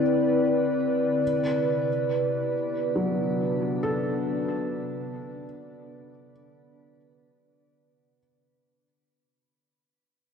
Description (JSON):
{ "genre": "ambient", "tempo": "69 BPM", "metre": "4/4", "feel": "straight", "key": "unclear", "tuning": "A4 = 438 Hz", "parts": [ { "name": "warbly tape-like pad", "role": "sustained chords", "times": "0.0-8.2 s", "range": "C3 to D5", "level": "-25 LUFS", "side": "equal", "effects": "chorus, built-in reverb, shimmer reverb" }, { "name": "felt-muted upright piano", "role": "arpeggios", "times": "0.0-8.2 s", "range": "F#3 to A4", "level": "-32 LUFS", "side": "left 1 dB", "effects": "tape echo, shimmer reverb" } ], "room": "wet concert hall reverb, RT60 2.3 s", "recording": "none", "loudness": "-24 LUFS", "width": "side -6 dB against mid", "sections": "0.0-8.2 A section", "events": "fade-out 0.0-8.2", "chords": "0.0 Cmaj9; 1.2 Bm7" }